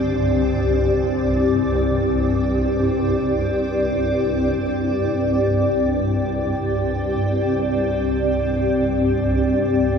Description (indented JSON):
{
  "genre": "dark ambient drone",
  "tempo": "free time",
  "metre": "none",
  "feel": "none",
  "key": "unclear",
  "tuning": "A4 = 440 Hz",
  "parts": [
    { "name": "granular cloud pad", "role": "sustained chords", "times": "0.0-10.0 s", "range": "C4 to D5", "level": "-20 LUFS", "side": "left 1 dB", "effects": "built-in reverb, shimmer reverb" },
    { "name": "gamelan-type bronze metallophone", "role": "arpeggios", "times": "0.0-10.0 s", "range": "D3 to G4", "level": "-39 LUFS", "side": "right 3 dB", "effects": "none" },
    { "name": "swarming drone", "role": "drone", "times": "0.0-10.0 s", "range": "C2 to G2", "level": "-22 LUFS", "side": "right 1 dB", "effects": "built-in reverb" },
    { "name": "quartz singing bowl", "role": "texture", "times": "0.0-10.0 s", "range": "C5", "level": "-41 LUFS", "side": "left 1 dB", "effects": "none" }
  ],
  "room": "wet huge ambient reverb, RT60 8.7 s",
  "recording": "none",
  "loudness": "-18 LUFS",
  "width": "side -6 dB against mid",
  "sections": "0.0-10.0 A section",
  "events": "filter sweep on synth drone 0.0-10.0",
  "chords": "0.0 C5"
}